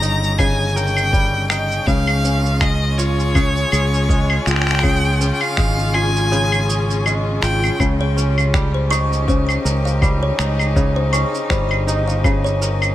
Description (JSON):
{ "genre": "folktronica", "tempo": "81 BPM", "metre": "4/4", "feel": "swing 56% on 16ths", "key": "unclear", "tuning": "A4 = 440 Hz", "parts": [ { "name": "clear violin", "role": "melody", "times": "0.0-7.8 s", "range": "Db5 to Bb5", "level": "-22 LUFS", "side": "left 1 dB", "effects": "ping-pong delay" }, { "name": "rich string quartet", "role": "sustained chords", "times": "0.0-12.9 s", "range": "Db3 to Ab4", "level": "-26 LUFS", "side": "left 1 dB", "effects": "none" }, { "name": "kora", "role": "arpeggios", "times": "0.0-12.9 s", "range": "Db3 to Bb4", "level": "-24 LUFS", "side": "left 1 dB", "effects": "ping-pong delay" }, { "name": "overdriven fingered electric bass", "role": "bass", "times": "0.0-12.9 s", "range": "G1 to Db2", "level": "-19 LUFS", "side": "equal", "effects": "none" }, { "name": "electronic cabasa, claves and finger snaps", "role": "drums", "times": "0.0-12.9 s", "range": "none", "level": "-23 LUFS", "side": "equal", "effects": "none" }, { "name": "electronic kick drum", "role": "drums", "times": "0.4-12.4 s", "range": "none", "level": "-19 LUFS", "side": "equal", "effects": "none" }, { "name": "kalimba", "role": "second line", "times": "8.0-12.6 s", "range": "C5 to Db6", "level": "-24 LUFS", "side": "left 1 dB", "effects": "vintage 12-bit sampler grit, ping-pong delay" } ], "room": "light reverb", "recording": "none", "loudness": "-15 LUFS", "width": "side -13 dB against mid", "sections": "0.0-12.9 A section", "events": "kick drops out 6.3-7.8", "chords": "0.0 Eb; 1.9 Db; 7.8 Eb/Db", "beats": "0.39 1.13 | 1.87 2.61 3.35 4.09 | 4.83 5.58 6.32 7.06 | 7.80 8.54 9.28 10.02 | 10.76 11.50 12.24" }